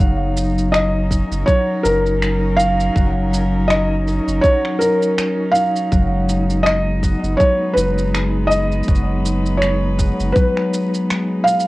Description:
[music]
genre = folktronica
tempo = 81 BPM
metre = 4/4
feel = swing 56% on 16ths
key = F# major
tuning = A4 = 440 Hz
[part]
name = felt-muted upright piano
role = melody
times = 0.0-11.7 s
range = A#4 to E#5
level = -19 LUFS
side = equal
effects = analog delay, plate reverb
[part]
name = dark string quartet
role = sustained chords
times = 0.0-11.7 s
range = F#3 to B4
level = -26 LUFS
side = right 1 dB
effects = cassette tape, plate reverb
[part]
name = concert harp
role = arpeggios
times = 0.0-11.7 s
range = F#3 to G#4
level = -22 LUFS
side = left 2 dB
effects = cassette tape, plate reverb
[part]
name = warm sub bass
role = bass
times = 0.0-10.3 s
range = F#1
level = -20 LUFS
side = equal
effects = none
[part]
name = electronic kick drum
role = drums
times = 0.0-10.5 s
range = none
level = -17 LUFS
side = equal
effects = cassette tape
[part]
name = electronic shaker and finger snaps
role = drums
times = 0.0-11.7 s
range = none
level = -26 LUFS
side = right 1 dB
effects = cassette tape
[sound]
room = moderate booth ambience, RT60 0.2 s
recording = home recording on cassette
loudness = -15 LUFS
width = side -19 dB against mid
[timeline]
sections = 0.0-11.7 A section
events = none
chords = 0.0 F#6; 5.9 G#m/F#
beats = | 0.00 0.74 1.48 2.22 | 2.96 3.70 4.44 5.18 | 5.92 6.66 7.40 8.14 | 8.88 9.63 10.37 11.11

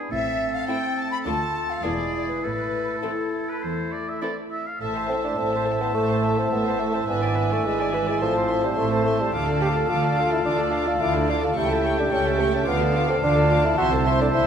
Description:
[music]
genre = quick classical-period movement for symphony orchestra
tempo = 106 BPM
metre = 4/4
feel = rubato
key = A minor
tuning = A4 = 440 Hz
[part]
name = clear oboe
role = second line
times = 0.0-14.5 s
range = G#4 to G5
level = -31 LUFS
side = right 1 dB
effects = none
[part]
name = warm clarinet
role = second line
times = 0.0-14.5 s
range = C4 to D5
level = -34 LUFS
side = left 2 dB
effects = none
[part]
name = mellow French horn section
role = sustained chords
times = 0.0-14.5 s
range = G#3 to G4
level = -31 LUFS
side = left 1 dB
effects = none
[part]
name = warm chamber violin section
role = melody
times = 0.1-14.5 s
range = A4 to D6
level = -35 LUFS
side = left 4 dB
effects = none
[part]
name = hollow concert flute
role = second line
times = 0.1-14.5 s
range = A4 to B5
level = -30 LUFS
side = left 2 dB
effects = none
[part]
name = clear chamber double bass section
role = bass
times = 0.1-14.5 s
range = E1 to D2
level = -30 LUFS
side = right 3 dB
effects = none
[part]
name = dark chamber cello section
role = bass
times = 0.1-14.5 s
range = D2 to D3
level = -30 LUFS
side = right 3 dB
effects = none
[part]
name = warm chamber violin section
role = second line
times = 0.7-14.5 s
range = E4 to A5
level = -33 LUFS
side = left 3 dB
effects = none
[part]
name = warm chamber viola section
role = accompaniment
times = 0.7-14.5 s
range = E3 to D5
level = -31 LUFS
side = equal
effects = none
[part]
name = mellow bassoon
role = accompaniment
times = 5.1-14.5 s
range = E3 to A4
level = -24 LUFS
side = right 1 dB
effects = none
[sound]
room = wet concert hall reverb, RT60 2.1 s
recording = minimal, uncompressed stereo recording, faint mains hum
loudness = -21 LUFS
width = side -8 dB against mid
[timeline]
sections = 0.0-4.8 A section; 4.8-14.5 B section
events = none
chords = 0.1 Am; 1.3 Dm; 1.8 E7; 2.4 A5; 4.8 Am; 7.1 E7/G#; 8.2 Am; 9.3 Dm; 11.6 A7/C#; 12.7 Dm; 13.8 Am/C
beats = | 0.12 0.69 1.26 1.84 | 2.43 3.03 3.63 4.22 | 4.81 5.38 5.94 6.51 | 7.08 7.65 8.21 8.77 | 9.34 9.90 10.45 11.01 | 11.56 12.12 12.67 13.23 | 13.79 14.35

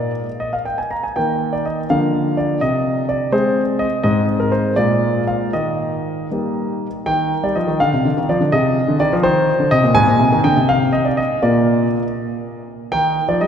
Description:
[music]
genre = classical-period piano sonatina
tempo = 77-85 BPM (dotted quarters)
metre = 6/8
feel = rubato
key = Eb major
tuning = A4 = 442 Hz
[part]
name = warm concert grand piano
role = solo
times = 0.0-13.5 s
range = Ab2 to Bb5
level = -15 LUFS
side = equal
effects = none
[sound]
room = wet church reverb, RT60 3.8 s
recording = recorded in a church or concert hall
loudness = -15 LUFS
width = side -8 dB against mid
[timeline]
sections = 0.0-7.1 A section; 7.1-13.5 B section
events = none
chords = 0.0 N.C.; 1.1 Eb; 1.9 Bb/D; 2.6 Ab/C; 4.0 Ab; 4.8 Bb7; 5.5 Eb; 7.8 Csus24; 8.5 Ab/C; 9.9 Ab; 11.4 Bb; 12.9 Eb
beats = 0.40 | 1.15 1.88 | 2.60 3.31 | 4.03 4.76 | 5.53 6.30 | 7.06 7.80 | 8.53 9.23 | 9.95 10.68 | 11.42 12.16 | 12.91

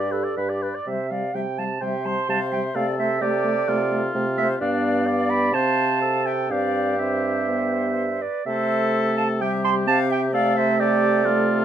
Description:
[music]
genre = quick classical-period movement for wind quintet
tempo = 127 BPM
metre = 4/4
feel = uneven beats, rubato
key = C major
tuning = A4 = 440 Hz
[part]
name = silver concert flute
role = melody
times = 0.0-11.6 s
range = A4 to A5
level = -30 LUFS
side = left 9 dB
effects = none
[part]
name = warm oboe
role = second line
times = 0.0-11.6 s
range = D4 to D5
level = -27 LUFS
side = left 3 dB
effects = none
[part]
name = mellow French horn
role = accompaniment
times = 0.0-11.6 s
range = G3 to G4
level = -28 LUFS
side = right 1 dB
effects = none
[part]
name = mellow clarinet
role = accompaniment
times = 0.0-11.6 s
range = G4 to C6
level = -24 LUFS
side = right 5 dB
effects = none
[part]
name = mellow bassoon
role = bass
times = 0.0-11.6 s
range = G2 to C3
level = -26 LUFS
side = right 1 dB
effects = none
[sound]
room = moderate studio reverb, RT60 0.7 s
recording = dark, warm production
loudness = -20 LUFS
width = side -10 dB against mid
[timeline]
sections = 0.9-11.6 A section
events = none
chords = 0.0 G; 0.9 C5; 2.8 Dm/C; 4.6 G7; 5.5 Fadd9/C; 6.5 C/G; 7.5 G; 8.5 C; 10.3 Dm/C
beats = 0.38 | 0.87 1.35 1.82 2.29 | 2.76 3.22 3.68 4.15 | 4.61 5.07 5.54 6.02 | 6.51 7.00 7.49 7.98 | 8.47 8.94 9.41 9.88 | 10.34 10.80 11.26

